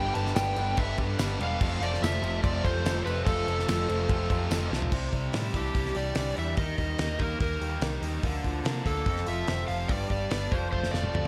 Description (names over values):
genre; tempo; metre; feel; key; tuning
classic rock; 145 BPM; 4/4; straight; unclear; A4 = 439 Hz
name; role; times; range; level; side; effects
overdriven slide guitar; melody; 0.0-11.3 s; G4 to A5; -35 LUFS; equal; slapback echo
picked twelve-string acoustic guitar; accompaniment; 0.0-11.3 s; F2 to D5; -43 LUFS; equal; none
string machine, full ensemble; sustained chords; 0.0-4.9 s; A3 to D5; -46 LUFS; equal; none
biting overdriven guitar; riff; 0.0-11.3 s; F2 to B4; -38 LUFS; equal; none
overdriven electric guitar; riff; 0.0-11.3 s; F2 to F4; -39 LUFS; equal; slapback echo
picked electric bass; bass; 0.0-11.3 s; E1 to C3; -34 LUFS; equal; none
damped 70s drum kit; drums; 0.1-11.3 s; crash cymbal, hi-hat, kick drum, snare drum, toms; -34 LUFS; equal; none
tambourine; percussion; 0.4-4.6 s; none; -47 LUFS; equal; none
room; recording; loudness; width
moderate lush hall reverb, RT60 1.5 s; big arena sound; -29 LUFS; mono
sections
0.0-4.9 A section; 4.9-11.3 B section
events
drum fill 4.7, 10.7-11.3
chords
0.0 G; 1.6 F; 4.9 Cadd9; 6.6 Eb; 8.2 Bb/D; 9.1 F; 9.9 G; 10.5 F